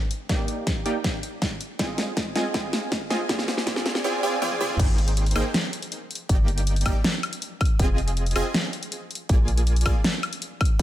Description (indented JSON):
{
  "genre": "future bass",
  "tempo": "160 BPM",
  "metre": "4/4",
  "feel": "half-time",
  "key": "Ab lydian",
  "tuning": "A4 = 441 Hz",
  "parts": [
    { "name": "big-room dance drum kit", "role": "drums", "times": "0.1-10.8 s", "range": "crash cymbal, hi-hat, snare drum, toms, woodblock", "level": "-27 LUFS", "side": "equal", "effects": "studio reverb" },
    { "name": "supersaw stab", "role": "riff", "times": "0.3-10.8 s", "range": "Bb3 to Ab5", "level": "-28 LUFS", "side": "right 1 dB", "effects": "sidechain pumping, low-pass filter, digital delay" },
    { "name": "electronic kick drum", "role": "drums", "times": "0.3-10.8 s", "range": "none", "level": "-23 LUFS", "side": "equal", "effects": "studio reverb" },
    { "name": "saturated sub bass", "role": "bass", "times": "4.8-10.8 s", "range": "F1 to Bb1", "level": "-23 LUFS", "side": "equal", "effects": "sidechain pumping" }
  ],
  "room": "light reverb",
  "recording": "high-pass filter",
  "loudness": "-22 LUFS",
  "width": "side -13 dB against mid",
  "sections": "0.0-4.8 A section; 4.8-10.8 B section",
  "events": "build-up 0.0-4.8; drum fill 0.0-4.0, 4.4-4.8; filter sweep on supersaw synth 0.0-4.8; filter sweep 0.0-4.8; drop 4.8-10.8",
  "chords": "0.3 Ebmaj7; 1.6 Fm7; 3.3 Fm6/C; 4.8 Abmaj9; 6.3 Ebmaj7/G; 7.6 Fm7; 9.3 Bb7"
}